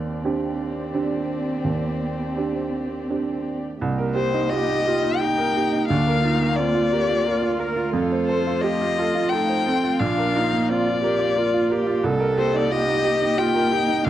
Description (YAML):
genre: neoclassical piano and strings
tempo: 87 BPM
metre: 3/4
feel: rubato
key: C dorian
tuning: A4 = 440 Hz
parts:
  - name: muted violin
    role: melody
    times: 0.0-14.1 s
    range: C4 to G5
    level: -25 LUFS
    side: left 6 dB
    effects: slapback echo
  - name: clear baby grand piano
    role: accompaniment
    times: 0.0-14.1 s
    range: Bb1 to C5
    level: -24 LUFS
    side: right 4 dB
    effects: none
  - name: muted chamber string section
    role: sustained chords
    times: 0.0-14.1 s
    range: A3 to F5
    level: -28 LUFS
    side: left 1 dB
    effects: none
  - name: muted viola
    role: accompaniment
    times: 4.5-14.1 s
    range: C4 to Bb4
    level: -25 LUFS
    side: right 1 dB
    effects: none
room: light reverb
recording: dry, close 1970s-style studio recording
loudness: -20 LUFS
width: side -12 dB against mid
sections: 0.0-3.8 A section; 3.8-14.1 B section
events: none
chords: 0.0 Cmadd9/Eb; 3.8 Cm7; 5.9 Bb/D; 7.9 F7; 10.0 Bb; 12.0 Cm7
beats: 0.26 0.95 | 1.66 2.38 3.10 | 3.81 4.51 5.20 | 5.89 6.57 7.26 | 7.94 8.62 9.31 | 9.99 10.68 11.36 | 12.03 12.70 13.37 | 14.04